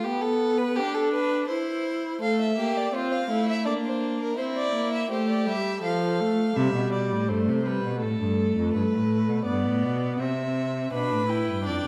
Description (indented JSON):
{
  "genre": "classical, baroque-style fugue for string quartet",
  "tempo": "83 BPM",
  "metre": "3/4",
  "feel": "straight",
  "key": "F major",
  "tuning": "A4 = 440 Hz",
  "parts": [
    { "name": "clear violin", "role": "second line", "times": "0.0-6.5, 10.9-11.9 s", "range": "D4 to D5", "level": "-31 LUFS", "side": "equal", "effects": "none" },
    { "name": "rich viola", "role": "accompaniment", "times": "0.0-11.9 s", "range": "F3 to E4", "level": "-29 LUFS", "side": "equal", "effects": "none" },
    { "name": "rich violin", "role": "melody", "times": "2.2-11.9 s", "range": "A4 to B5", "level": "-34 LUFS", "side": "equal", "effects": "none" },
    { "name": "rich cello", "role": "bass", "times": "6.6-11.9 s", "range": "F2 to C3", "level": "-29 LUFS", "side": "equal", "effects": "none" }
  ],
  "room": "wet recital hall reverb, RT60 1.3 s",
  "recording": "none",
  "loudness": "-26 LUFS",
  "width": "mono",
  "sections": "0.0-10.9 A section",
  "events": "none",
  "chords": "0.1 G/B; 1.5 C/E; 2.2 F/A; 3.7 Bb; 4.4 C; 5.8 F; 6.6 C; 8.0 F; 8.7 G; 10.2 C; 10.9 G"
}